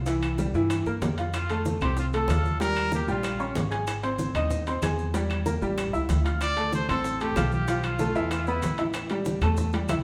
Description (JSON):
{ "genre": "latin, salsa", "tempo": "189 BPM", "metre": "4/4", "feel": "straight", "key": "F major", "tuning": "A4 = 439 Hz", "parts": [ { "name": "upright bass", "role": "bass", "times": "0.0-10.0 s", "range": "Ab1 to G2", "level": "-32 LUFS", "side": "equal", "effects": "none" }, { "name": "bright upright piano", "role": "accompaniment", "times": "0.1-10.0 s", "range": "E3 to Ab6", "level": "-31 LUFS", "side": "equal", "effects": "none" }, { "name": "bongos", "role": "percussion", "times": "0.1-10.0 s", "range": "none", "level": "-39 LUFS", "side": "equal", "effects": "none" }, { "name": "congas", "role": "percussion", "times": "0.1-10.0 s", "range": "none", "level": "-36 LUFS", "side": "equal", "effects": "none" }, { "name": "maracas", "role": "percussion", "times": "0.1-10.0 s", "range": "none", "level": "-48 LUFS", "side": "equal", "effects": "none" }, { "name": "timbales", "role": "percussion", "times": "0.1-10.0 s", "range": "none", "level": "-40 LUFS", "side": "equal", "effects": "none" }, { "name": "claves", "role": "percussion", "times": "0.2-10.0 s", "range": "none", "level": "-44 LUFS", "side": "equal", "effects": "none" }, { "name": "bright trumpet", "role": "melody", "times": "1.3-3.5, 6.4-8.8 s", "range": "E4 to D5", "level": "-33 LUFS", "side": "equal", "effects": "none" } ], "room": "wet large studio reverb, RT60 1.3 s", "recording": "band playing live in one room", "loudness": "-27 LUFS", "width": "mono", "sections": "0.0-1.3 A section; 1.3-10.0 A section", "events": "none", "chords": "0.1 C7; 1.3 F; 2.6 Eb9; 3.9 Ab; 5.1 Edim; 5.8 A7; 6.4 Dm7; 7.7 G13/B; 8.3 E5; 8.9 Am7", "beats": "| 0.07 0.39 0.70 1.02 | 1.34 1.65 1.97 2.29 | 2.61 2.92 3.24 3.56 | 3.87 4.19 4.51 4.83 | 5.14 5.46 5.78 6.09 | 6.41 6.73 7.04 7.36 | 7.68 7.99 8.31 8.63 | 8.94 9.26 9.58 9.89" }